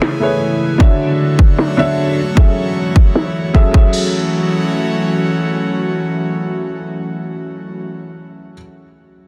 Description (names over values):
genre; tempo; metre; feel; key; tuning
future bass; 153 BPM; 4/4; half-time; F# minor; A4 = 440 Hz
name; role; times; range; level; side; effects
warm grand piano; accompaniment; 0.0-9.3 s; D3 to E5; -20 LUFS; equal; sidechain pumping, tape echo
airy breathy pad; sustained chords; 0.0-7.8 s; C#3 to C#5; -21 LUFS; equal; chorus, sidechain pumping
trap drum kit; drums; 0.0-3.8 s; crash cymbal, finger snaps, snare drum; -21 LUFS; equal; low-pass filter on hats, low-pass filter on snare, low-pass filter on cymbals
electronic kick drum; drums; 0.8-3.8 s; none; -11 LUFS; equal; none
room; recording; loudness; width
little or no reverb; dense, heavily limited modern master; -15 LUFS; mono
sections
0.0-3.9 A section; 3.9-7.1 B section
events
filter sweep on drum 0.0-3.9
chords
0.0 Amaj7; 0.8 Dmaj7; 2.2 F#m7